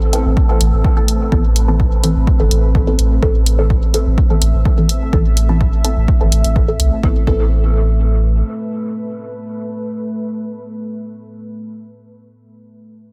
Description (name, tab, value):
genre	dub techno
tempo	126 BPM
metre	4/4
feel	straight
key	A minor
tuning	A4 = 439 Hz
part	deep dark ambient pad	sustained chords	0.0-11.6 s	A3 to E5	-28 LUFS	equal	chorus, built-in reverb, sidechain pumping
part	wind-like tuned noise texture	texture	0.0-7.0 s	A4	-38 LUFS	equal	built-in reverb, sidechain pumping
part	filtered dub chord stab	stabs	0.1-11.9 s	E3 to A4	-24 LUFS	equal	phaser, sidechain pumping, dub echo
part	electronic hi-hat	drums	0.1-6.9 s	none	-23 LUFS	equal	none
part	warm sub bass	bass	0.3-8.4 s	G1 to C2	-17 LUFS	equal	sidechain pumping
part	electronic kick drum	drums	0.4-7.4 s	none	-17 LUFS	equal	none
room	little or no reverb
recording	dense, heavily limited modern master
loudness	-15 LUFS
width	mono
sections	0.0-7.0 A section; 7.0-10.8 B section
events	filter sweep on synth stab 0.0-7.0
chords	0.0 Amadd9